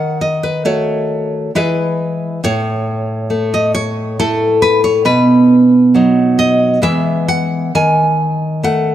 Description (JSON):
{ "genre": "romantic piece for solo classical guitar", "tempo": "68 BPM", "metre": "3/4", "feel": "rubato", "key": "unclear", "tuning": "A4 = 442 Hz", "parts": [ { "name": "nylon-string guitar", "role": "solo", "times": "0.0-8.9 s", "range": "A2 to G#5", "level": "-12 LUFS", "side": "equal", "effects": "none" } ], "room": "light reverb", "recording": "close, detailed microphones", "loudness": "-12 LUFS", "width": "side -11 dB against mid", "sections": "0.0-8.9 A section", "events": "none", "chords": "0.0 D#m7b5; 1.5 E; 2.4 A; 5.1 B; 6.8 E; 7.7 B7/D# (rootless)" }